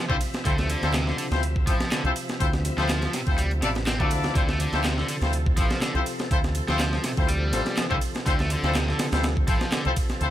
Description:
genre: breakbeat, breaks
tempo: 123 BPM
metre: 4/4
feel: swing 54% on 16ths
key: D minor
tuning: A4 = 440 Hz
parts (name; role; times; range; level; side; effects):
- overdriven tonewheel organ; sustained chords; 0.0-10.3 s; C3 to E5; -34 LUFS; equal; chorus vibrato, slow rotary speaker, sidechain pumping
- cranked stack guitar; riff; 0.0-9.8 s; C3 to C4; -31 LUFS; equal; overdrive, tape echo
- downlifter; sound effects; 0.2-0.5 s; none; barely audible; none; none
- brilliant horn section; stabs; 0.1-10.3 s; C4 to D5; -30 LUFS; left 3 dB; tape echo
- overdriven picked electric bass; bass; 0.1-10.3 s; A1 to D2; -26 LUFS; equal; none
- breakbeat sampler-style drum kit; drums; 0.1-10.3 s; hi-hat, kick drum, snare drum; -26 LUFS; equal; none
- garage drum kit; drums; 0.1-10.3 s; handclaps, hi-hat, ride cymbal; -37 LUFS; right 2 dB; overdrive
room: digital ambience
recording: none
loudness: -22 LUFS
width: side -12 dB against mid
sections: 0.0-10.3 A section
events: none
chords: 0.0 Dm9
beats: | 0.45 0.94 1.43 1.92 | 2.40 2.89 3.38 3.87 | 4.36 4.84 5.33 5.82 | 6.31 6.79 7.28 7.77 | 8.26 8.75 9.23 9.72 | 10.21

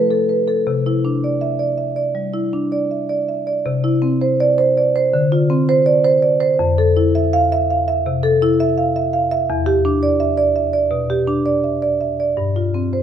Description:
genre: classical, contemporary piece for solo marimba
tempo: 82 BPM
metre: 4/4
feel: straight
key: C major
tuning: A4 = 440 Hz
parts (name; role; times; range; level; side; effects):
- marimba with medium mallets; solo; 0.0-13.0 s; E2 to F5; -15 LUFS; right 1 dB; none
room: wet stone room reverb, RT60 1.0 s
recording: heard from further back in the room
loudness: -15 LUFS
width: side -9 dB against mid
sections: 0.0-3.7 A section; 3.7-13.0 A section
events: none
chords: 0.0 F; 0.7 Cadd9; 3.7 C; 5.1 Dm7; 6.6 Fmaj7; 9.5 Em7; 12.4 G7sus4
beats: | 0.68 1.43 2.17 2.92 | 3.66 4.40 5.13 5.86 | 6.59 7.32 8.05 8.77 | 9.48 10.19 10.91 11.63 | 12.36

